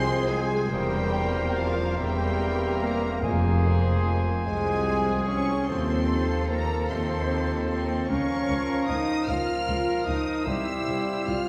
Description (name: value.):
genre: classical.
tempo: 46-52 BPM (dotted quarters).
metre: 6/8.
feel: rubato.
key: F minor.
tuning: A4 = 441 Hz.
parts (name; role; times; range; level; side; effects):
muted symphonic violin section; melody; 0.0-11.5 s; F5 to F6; -38 LUFS; equal; none.
clear oboe; second line; 0.0-11.5 s; A4 to C5; -40 LUFS; equal; none.
large flute ensemble; second line; 0.0-11.5 s; F4 to F5; -39 LUFS; equal; none.
mellow clarinet; second line; 0.0-11.5 s; Ab4 to Ab5; -38 LUFS; equal; none.
muted symphonic violin section; second line; 0.0-11.4 s; G3 to C5; -42 LUFS; equal; none.
muted symphonic viola section; accompaniment; 0.0-11.5 s; F3 to F4; -38 LUFS; equal; none.
warm bassoon; accompaniment; 0.0-11.5 s; F3 to Bb3; -38 LUFS; equal; none.
dark trombone section; sustained chords; 0.0-11.5 s; F3 to C4; -37 LUFS; equal; none.
warm French horn section; sustained chords; 0.0-11.5 s; F3 to F4; -34 LUFS; equal; none.
clear trumpet section; stabs; 0.0-11.5 s; G4 to Bb4; -37 LUFS; equal; none.
muted symphonic cello section; bass; 0.0-11.3 s; C2 to F2; -32 LUFS; equal; none.
muted symphonic double bass section; bass; 0.0-11.4 s; E1 to Eb2; -33 LUFS; equal; none.
timpani; percussion; 3.2-4.4, 10.5-11.5 s; F2 to C3; -39 LUFS; equal; none.
room: wet scoring stage reverb, RT60 1.7 s.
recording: heard from further back in the room.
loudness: -26 LUFS.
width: mono.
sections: 0.0-11.5 A section.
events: none.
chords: 0.0 Fm; 0.7 C7/E; 3.2 Fm; 5.7 F7/Eb; 8.1 Bbm/Db; 10.5 C.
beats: | 0.71 1.98 | 3.23 4.45 | 5.68 6.91 | 8.09 9.27 | 10.46.